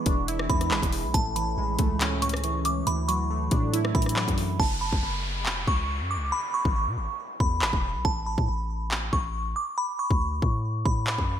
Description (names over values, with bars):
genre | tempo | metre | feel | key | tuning
hip hop, drill | 139 BPM | 4/4 | half-time | F# minor | A4 = 439 Hz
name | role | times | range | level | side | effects
glassy synth bell | melody | 0.0-11.4 s | A5 to D6 | -29 LUFS | right 1 dB | chorus, ping-pong delay
warbly lo-fi synth keys | accompaniment | 0.0-4.6 s | A2 to E4 | -30 LUFS | right 2 dB | chorus
long sustained 808-style bass | bass | 0.1-11.4 s | E1 to B2 | -30 LUFS | equal | none
drill drum kit | drums | 0.1-11.3 s | handclaps, hi-hat, kick drum, rim click | -26 LUFS | equal | gated reverb
downlifter | sound effects | 4.6-8.0 s | none | -36 LUFS | left 1 dB | none
room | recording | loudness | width
light reverb, digital ambience | bright 1980s-style digital production | -24 LUFS | side -10 dB against mid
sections
0.0-4.6 A section; 4.6-11.4 B section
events
hi-hats muted 4.6-11.4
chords
0.0 E7; 1.1 Amaj7; 2.9 Dadd9; 4.6 F#5; 6.3 E; 8.0 A; 9.8 D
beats
0.28 0.71 | 1.14 1.57 2.01 2.44 | 2.87 3.30 3.73 4.16 | 4.60 5.03 5.46 5.89 | 6.32 6.75 7.19 7.62 | 8.05 8.48 8.91 9.34 | 9.78 10.21 10.64 11.07